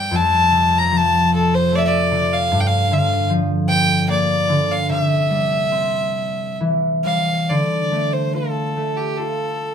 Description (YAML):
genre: celtic folk, Celtic slow air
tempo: 65-76 BPM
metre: 3/4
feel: rubato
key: D minor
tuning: A4 = 439 Hz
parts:
  - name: rich fiddle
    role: melody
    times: 0.0-9.7 s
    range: G4 to Bb5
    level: -18 LUFS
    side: left 1 dB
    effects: none
  - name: concert harp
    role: accompaniment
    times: 0.0-9.7 s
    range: F2 to G4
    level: -19 LUFS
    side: equal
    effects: none
room: light reverb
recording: band playing live in one room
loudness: -16 LUFS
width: side -8 dB against mid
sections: 0.0-7.5 A section; 7.5-9.7 B section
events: none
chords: 0.1 F; 2.5 Gm7; 4.9 C; 7.5 Dm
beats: | 0.11 0.91 1.71 | 2.50 3.29 4.09 | 4.90 5.72 6.60 | 7.49 8.35 9.20